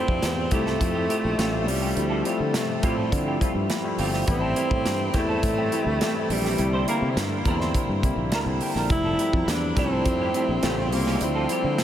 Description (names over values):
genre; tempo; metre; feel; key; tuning
polished 1980s jazz-funk pop; 104 BPM; 4/4; straight; D minor; A4 = 438 Hz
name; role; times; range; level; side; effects
breathy alto saxophone; melody; 0.0-11.8 s; G3 to E4; -27 LUFS; right 1 dB; diffuse ambient delay
barky tine electric piano; accompaniment; 0.0-11.8 s; C#3 to A5; -28 LUFS; left 3 dB; overdrive, wide subtle chorus
semi-hollow electric guitar; riff; 0.0-11.8 s; A3 to C5; -32 LUFS; right 2 dB; ensemble chorus
sustaining fretless electric bass; bass; 0.1-11.8 s; F1 to D3; -28 LUFS; equal; none
modern studio drum kit; drums; 0.1-11.8 s; hi-hat, kick drum, snare drum; -28 LUFS; equal; none
room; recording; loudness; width
wet huge ambient reverb, RT60 8.2 s; dreamy mix soaked in reverb; -21 LUFS; side -10 dB against mid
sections
0.0-11.8 A section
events
tine electric piano fill 8.0-8.9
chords
0.0 Fmaj9; 1.4 A7alt; 2.0 Dm11; 4.3 Am7; 6.6 C9; 8.9 Fmaj9; 10.6 A7alt; 11.2 Dm11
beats
0.23 0.81 1.39 | 1.96 2.54 3.12 3.70 | 4.28 4.86 5.44 6.01 | 6.59 7.17 7.75 8.33 | 8.90 9.48 10.06 10.64 | 11.21 11.79